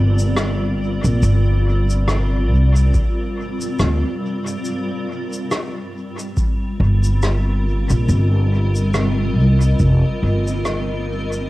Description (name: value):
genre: ambient dub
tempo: 70 BPM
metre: 4/4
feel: swing 57% on 16ths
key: unclear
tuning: A4 = 440 Hz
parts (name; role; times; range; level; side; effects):
- granular cloud pad; sustained chords; 0.0-11.5 s; G3 to Eb5; -23 LUFS; equal; built-in reverb, vintage 12-bit sampler grit, cassette tape
- upright bass; bass; 0.0-11.5 s; F1 to D2; -16 LUFS; equal; tube saturation
- shaker and rim click; drums; 0.2-11.5 s; none; -26 LUFS; equal; cassette tape, dub echo
- electronic kick drum; drums; 2.9-10.0 s; none; -21 LUFS; equal; cassette tape
room: little or no reverb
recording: home recording on cassette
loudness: -16 LUFS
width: side -18 dB against mid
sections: 0.0-11.5 A section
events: fade-out 9.2-11.5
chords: 0.0 Gm7; 4.7 Cm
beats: 0.37 | 1.23 2.08 2.94 3.80 | 4.66 5.51 6.37 7.23 | 8.09 8.94 9.80 10.66